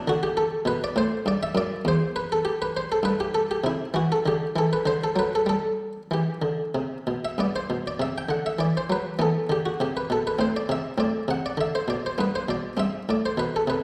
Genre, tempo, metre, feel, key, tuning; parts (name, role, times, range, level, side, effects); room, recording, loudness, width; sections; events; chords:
classical, baroque-style suite movement for harpsichord; 100 BPM; 3/4; rubato; G major; A4 = 439 Hz
buff-stop harpsichord; solo; 0.0-13.8 s; E2 to G5; -26 LUFS; equal
wet recital hall reverb, RT60 1.3 s; heard from further back in the room; -26 LUFS; mono
0.0-7.4 A section; 7.4-13.8 B section
0.1 D5; 1.2 G5; 1.8 Em; 3.6 C; 4.2 G5/D; 4.8 D; 5.5 G5; 7.4 G; 9.2 E5; 10.4 Am; 11.0 D5/A; 12.2 G; 12.8 C5/G